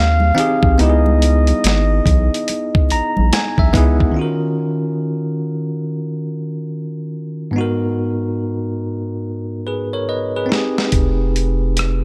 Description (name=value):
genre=R&B, neo-soul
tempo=71 BPM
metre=4/4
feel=swing 64% on 16ths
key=unclear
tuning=A4 = 438 Hz
part: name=breathy flugelhorn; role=melody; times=0.0-3.3 s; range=Eb5 to F5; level=-23 LUFS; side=equal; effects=analog delay
part: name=bell-like tine electric piano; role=accompaniment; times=0.0-12.0 s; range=Ab2 to Bb5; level=-22 LUFS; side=equal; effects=none
part: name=round analog bass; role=bass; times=0.0-4.1, 10.9-12.0 s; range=F1 to Eb2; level=-18 LUFS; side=equal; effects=none
part: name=congas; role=percussion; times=0.2-4.0 s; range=none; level=-30 LUFS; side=equal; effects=none
part: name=dusty soul sampler-style drum kit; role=drums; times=0.4-4.2, 10.5-12.0 s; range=hi-hat, kick drum, rim click, snare drum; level=-20 LUFS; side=equal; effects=none
room=little or no reverb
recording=none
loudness=-18 LUFS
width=mono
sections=0.0-4.2 A section; 4.2-12.0 B section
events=tine electric piano fill 2.5-4.2; drum fill 9.2-10.9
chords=0.0 Fm9; 0.8 Dbm9; 4.2 Ebm9; 7.5 Abm9; 10.5 Fm9